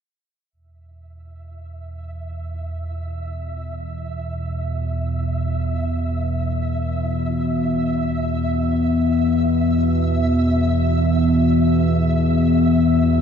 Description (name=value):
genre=dark ambient drone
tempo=free time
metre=none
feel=none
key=unclear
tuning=A4 = 440 Hz
part: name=analog drone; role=drone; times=1.2-13.2 s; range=E2 to B2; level=-18 LUFS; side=equal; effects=chorus
part: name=flickering grainy texture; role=texture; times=1.6-13.2 s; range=E5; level=-29 LUFS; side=right 1 dB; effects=built-in reverb
room=wet cathedral reverb, RT60 6.0 s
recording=none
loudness=-18 LUFS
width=side -7 dB against mid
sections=0.5-13.2 A section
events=fade-in on synth texture 0.5-13.2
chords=0.5 E5